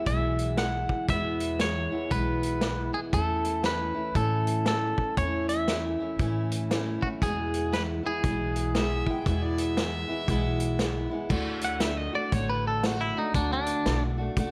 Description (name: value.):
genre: honky-tonk and classic country.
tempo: 118 BPM.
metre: 4/4.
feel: swing 62% on 8ths.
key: unclear.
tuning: A4 = 438 Hz.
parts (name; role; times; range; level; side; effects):
twangy electric guitar; melody; 0.0-14.0 s; D4 to F#5; -33 LUFS; equal; none.
picked steel-string acoustic guitar; accompaniment; 0.0-14.5 s; E2 to F#4; -33 LUFS; equal; none.
upright bass; bass; 0.1-14.5 s; A1 to A2; -34 LUFS; equal; none.
vintage drum kit; drums; 0.1-14.5 s; crash cymbal, hi-hat, kick drum, snare drum; -34 LUFS; equal; none.
rich fiddle; second line; 8.7-11.1 s; D5 to G5; -39 LUFS; equal; none.
room: light reverb.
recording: none.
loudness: -28 LUFS.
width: mono.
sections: 0.0-11.3 A section; 11.3-14.5 B section.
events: clean electric guitar solo 11.3-14.5.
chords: 0.0 E; 3.1 A/E; 7.2 E; 11.3 D.